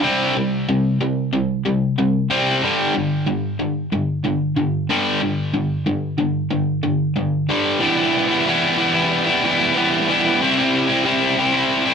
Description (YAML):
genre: rock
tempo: 93 BPM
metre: 4/4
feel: straight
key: unclear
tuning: A4 = 444 Hz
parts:
  - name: cranked stack guitar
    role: solo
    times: 0.0-11.9 s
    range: G2 to E4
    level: -16 LUFS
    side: equal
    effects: overdrive, digital delay
room: wet small room reverb, RT60 0.5 s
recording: rough rehearsal-room recording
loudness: -17 LUFS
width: side -6 dB against mid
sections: 0.0-7.8 A section; 7.8-11.9 B section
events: none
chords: 0.0 C5; 2.6 G5; 7.8 Em; 10.4 C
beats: | 0.04 0.68 1.33 1.98 | 2.63 3.28 3.93 4.58 | 5.22 5.87 6.52 7.17 | 7.81 8.46 9.11 9.76 | 10.40 11.05 11.70